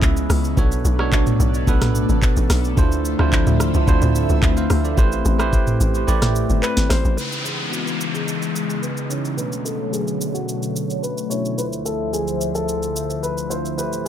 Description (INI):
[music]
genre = amapiano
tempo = 109 BPM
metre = 4/4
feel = straight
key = unclear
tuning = A4 = 440 Hz
[part]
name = bell-like tine electric piano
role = accompaniment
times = 0.0-14.1 s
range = B2 to F5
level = -25 LUFS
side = right 5 dB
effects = low-pass filter, tape echo
[part]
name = airy breathy pad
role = sustained chords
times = 0.0-14.1 s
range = D2 to E5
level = -25 LUFS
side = left 3 dB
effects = chorus, phaser, sidechain pumping, low-pass filter
[part]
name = tight log drum bass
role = bass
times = 0.0-7.2 s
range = G1 to D2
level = -19 LUFS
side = equal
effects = none
[part]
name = smooth R&B drum kit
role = drums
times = 0.0-14.1 s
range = handclaps, hi-hat, kick drum, rim click, shaker, snare drum, toms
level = -21 LUFS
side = equal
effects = none
[part]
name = warm grand piano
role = melody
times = 6.6-14.1 s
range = F#4 to C#5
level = -27 LUFS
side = left 2 dB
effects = low-pass filter, tape echo
[part]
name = downlifter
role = sound effects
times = 7.2-11.6 s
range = none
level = -30 LUFS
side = equal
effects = none
[sound]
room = little or no reverb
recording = echo-heavy mix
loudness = -17 LUFS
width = side -10 dB against mid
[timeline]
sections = 0.0-7.2 A section; 7.2-14.1 B section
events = drop 0.0-7.2; kick muted 6.1-7.2; filter sweep 7.2-14.1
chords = 0.0 C#m9; 0.6 Bm9; 2.8 Dm9; 5.0 Am9; 7.2 C#m9; 9.4 Bm9; 11.6 Dm9